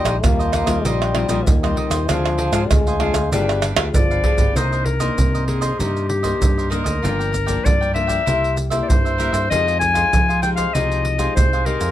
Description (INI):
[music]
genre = samba and choro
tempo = 97 BPM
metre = 4/4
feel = straight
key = C minor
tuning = A4 = 440 Hz
[part]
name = growling trombone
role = second line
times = 0.0-4.5 s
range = Eb3 to Bb3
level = -23 LUFS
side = left 4 dB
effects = none
[part]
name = cavaquinho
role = accompaniment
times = 0.0-11.9 s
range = D4 to G5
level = -26 LUFS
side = right 4 dB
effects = none
[part]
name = nylon-string guitar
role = accompaniment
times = 0.0-11.9 s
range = G2 to Ab4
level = -27 LUFS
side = left 5 dB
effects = none
[part]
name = fingered electric bass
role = bass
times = 0.0-11.9 s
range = G1 to F3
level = -23 LUFS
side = equal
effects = none
[part]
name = maracas, surdo, pandeiro and tamborim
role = percussion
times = 0.1-11.9 s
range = none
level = -20 LUFS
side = right 2 dB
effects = none
[part]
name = clear clarinet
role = melody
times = 3.9-11.9 s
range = G4 to Ab5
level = -21 LUFS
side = left 4 dB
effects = none
[sound]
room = light reverb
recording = none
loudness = -16 LUFS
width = side -12 dB against mid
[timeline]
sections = 0.0-4.6 A section; 4.6-11.9 B section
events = drum fill 3.8-4.6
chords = 0.0 Eb69; 2.1 Dm7b5; 3.3 G7b9; 4.6 Cm9; 7.0 Gm7; 8.3 C7; 9.5 Fm9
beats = 0.23 0.85 1.47 | 2.09 2.71 3.32 3.94 | 4.56 5.18 5.80 6.42 | 7.04 7.66 8.27 8.89 | 9.51 10.13 10.75 11.37